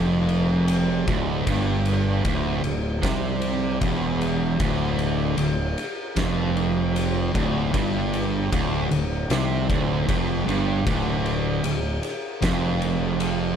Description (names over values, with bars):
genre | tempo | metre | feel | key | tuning
stoner and doom metal | 77 BPM | 4/4 | straight | D minor | A4 = 439 Hz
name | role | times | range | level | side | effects
fuzz guitar | riff | 0.0-13.6 s | D2 to C3 | -25 LUFS | right 9 dB | distortion
thick fuzz guitar | riff | 0.0-13.6 s | D2 to C3 | -27 LUFS | left 8 dB | distortion
fuzz fingered electric bass | bass | 0.0-13.6 s | D1 to C2 | -27 LUFS | equal | overdrive
oversized low-tuned drum kit | drums | 0.3-13.4 s | kick drum, ride cymbal, snare drum | -28 LUFS | equal | none
room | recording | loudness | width
light reverb | dark, warm production | -21 LUFS | side -8 dB against mid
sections
0.0-13.6 A section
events
none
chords
0.0 Dm